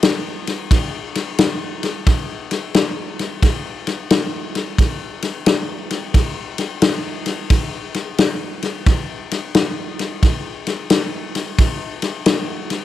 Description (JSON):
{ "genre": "blues", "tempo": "88 BPM", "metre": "4/4", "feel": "swing 65% on 8ths", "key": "none", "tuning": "none", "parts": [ { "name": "natural country drum kit", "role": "drums", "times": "0.0-12.8 s", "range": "kick drum, ride cymbal, snare drum", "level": "-17 LUFS", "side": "left 1 dB", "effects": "none" } ], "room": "light reverb", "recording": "1960s-style stereo", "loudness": "-17 LUFS", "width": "side -13 dB against mid", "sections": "0.0-12.8 A section", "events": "none", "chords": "none" }